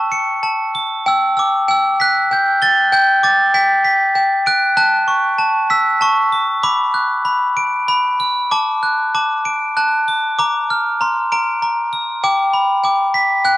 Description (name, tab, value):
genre	children's music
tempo	97 BPM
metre	3/4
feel	straight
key	D major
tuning	A4 = 440 Hz
part	glockenspiel with hard plastic mallets	solo	0.0-13.6 s	G5 to B7	-13 LUFS	equal	cassette tape
room	light reverb, small room ambience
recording	home recording on cassette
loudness	-13 LUFS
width	side -16 dB against mid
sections	0.0-8.5 A section; 8.5-13.6 B section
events	none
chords	0.0 A; 1.1 Em; 2.9 G; 4.8 Aadd9; 6.6 D6; 8.5 D; 10.4 Bb; 12.2 G